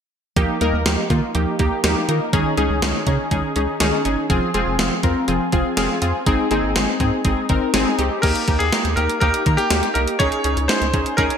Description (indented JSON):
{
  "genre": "synth-pop",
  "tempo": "122 BPM",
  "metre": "4/4",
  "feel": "straight",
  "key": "unclear",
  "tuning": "A4 = 440 Hz",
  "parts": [
    { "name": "funky polysynth comp", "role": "accompaniment", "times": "0.4-11.4 s", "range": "Bb3 to Bb4", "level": "-20 LUFS", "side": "left 1 dB", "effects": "chorus" },
    { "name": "soft round pluck", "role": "arpeggios", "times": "0.4-8.2 s", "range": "Eb3 to F5", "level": "-27 LUFS", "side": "right 3 dB", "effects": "chorus, low-pass filter, digital delay" },
    { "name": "rubbery square bass", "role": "bass", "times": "0.4-11.3 s", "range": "F1 to Eb3", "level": "-23 LUFS", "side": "equal", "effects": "none" },
    { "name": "gated 80s digital drum machine", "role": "drums", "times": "0.4-11.4 s", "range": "crash cymbal, hi-hat, kick drum, snare drum", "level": "-22 LUFS", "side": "equal", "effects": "gated reverb, gated reverb snare" },
    { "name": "bright grand piano", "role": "melody", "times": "8.2-11.2 s", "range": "G4 to Db5", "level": "-21 LUFS", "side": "left 1 dB", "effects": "digital delay" }
  ],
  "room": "moderate lush hall reverb, RT60 1.8 s",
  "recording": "bright 1980s-style digital production",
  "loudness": "-17 LUFS",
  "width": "side -7 dB against mid",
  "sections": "0.4-8.2 A section; 8.2-11.4 B section",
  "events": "filter sweep on synth pluck 0.4-8.2",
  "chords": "0.4 Ebadd9; 2.3 Dbsus2; 4.3 Fm; 6.3 Abadd9; 8.2 Eb; 10.2 Dbsus2",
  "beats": "| 0.36 0.86 1.35 1.84 | 2.33 2.82 3.31 3.81 | 4.30 4.79 5.28 5.77 | 6.26 6.76 7.25 7.74 | 8.23 8.72 9.22 9.71 | 10.20 10.69 11.18"
}